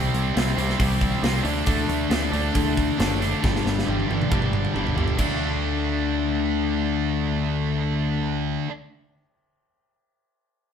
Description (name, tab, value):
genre	hard rock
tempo	137 BPM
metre	4/4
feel	straight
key	unclear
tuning	A4 = 439 Hz
part	high-gain distorted guitar	riff	0.0-8.7 s	G2 to D4	-27 LUFS	right 6 dB	distortion
part	overdriven electric guitar	riff	0.0-8.7 s	G2 to D4	-26 LUFS	left 6 dB	none
part	picked electric bass	bass	0.0-8.6 s	F#1 to D2	-27 LUFS	equal	none
part	tight metal drum kit	drums	0.1-5.3 s	crash cymbal, hi-hat, kick drum, snare drum, toms	-26 LUFS	equal	none
room	moderate studio reverb, RT60 0.9 s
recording	band playing live in one room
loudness	-21 LUFS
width	side -8 dB against mid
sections	0.0-5.2 A section; 5.2-8.7 B section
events	drum fill 3.4-5.2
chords	0.0 C5; 1.4 D; 3.4 G5; 5.2 D5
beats	0.35 0.79 1.23 | 1.67 2.11 2.55 2.98 | 3.42 3.86 4.30 4.74 | 5.18 5.62 6.06 6.50 | 6.94 7.38 7.82 8.26